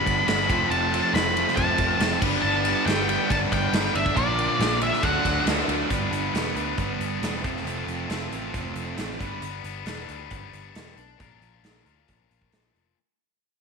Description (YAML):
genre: classic rock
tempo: 137 BPM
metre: 4/4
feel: straight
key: unclear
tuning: A4 = 440 Hz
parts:
  - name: octave-fuzz lead guitar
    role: melody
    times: 0.0-5.4 s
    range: D5 to B5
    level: -25 LUFS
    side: left 1 dB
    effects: distortion
  - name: bright tonewheel organ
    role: sustained chords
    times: 0.0-5.9 s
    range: none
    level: barely audible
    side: none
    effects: none
  - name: biting overdriven guitar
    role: riff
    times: 0.0-5.9 s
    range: F2 to D4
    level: -31 LUFS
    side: right 1 dB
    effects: none
  - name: sludgy distorted guitar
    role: riff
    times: 0.0-9.4 s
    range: F2 to D4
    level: -30 LUFS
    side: right 12 dB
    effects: overdrive
  - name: tight distorted guitar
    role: riff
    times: 0.0-13.0 s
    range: Bb2 to B4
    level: -30 LUFS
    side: left 11 dB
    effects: distortion
  - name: picked electric bass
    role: bass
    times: 0.1-12.9 s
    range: E1 to D2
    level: -32 LUFS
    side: equal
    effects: none
  - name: big rock drum kit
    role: drums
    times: 0.1-12.9 s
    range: crash cymbal, hi-hat, kick drum, ride cymbal, snare drum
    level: -28 LUFS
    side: equal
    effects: none
room: moderate echo chamber reverb, RT60 1.2 s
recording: 1960s-style stereo with parts hard left and right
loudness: -22 LUFS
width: side -5 dB against mid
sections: 0.0-5.9 A section; 5.9-13.0 B section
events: fade-out 5.9-13.0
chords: 0.5 F; 2.2 G; 4.2 Bb; 5.0 D; 5.9 G; 7.4 F; 9.2 G; 11.2 Bb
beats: 0.27 | 0.71 1.14 1.57 2.00 | 2.43 2.87 3.30 3.73 | 4.16 4.60 5.03 5.47 | 5.90 6.34 6.78 7.22 | 7.66 8.10 8.54 8.98 | 9.42 9.86 10.31 10.75 | 11.20 11.64 12.08 12.53